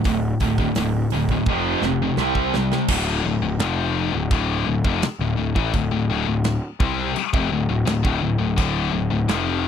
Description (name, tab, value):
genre	heavy metal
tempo	85 BPM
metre	4/4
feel	straight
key	D minor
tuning	A4 = 441 Hz
part	scooped high-gain guitar	riff	0.0-9.7 s	D2 to C4	-22 LUFS	left 7 dB	distortion
part	tight distorted guitar	riff	0.0-2.9 s	D2 to C4	-24 LUFS	right 15 dB	distortion
part	big rock drum kit	drums	0.0-9.5 s	china cymbal, crash cymbal, hi-hat, kick drum, snare drum, toms	-24 LUFS	right 1 dB	none
part	fuzz picked electric bass	bass	0.1-9.7 s	D1 to C2	-25 LUFS	right 1 dB	overdrive
room	little or no reverb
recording	dry, close 1970s-style studio recording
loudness	-19 LUFS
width	side -8 dB against mid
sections	0.0-2.9 A section; 2.9-9.7 B section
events	drum fill 1.5-2.9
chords	0.0 D5; 1.5 F5; 2.2 C5; 2.9 Dm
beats	| 0.06 0.77 1.48 2.19 | 2.90 3.61 4.32 5.02 | 5.73 6.44 7.15 7.86 | 8.57 9.28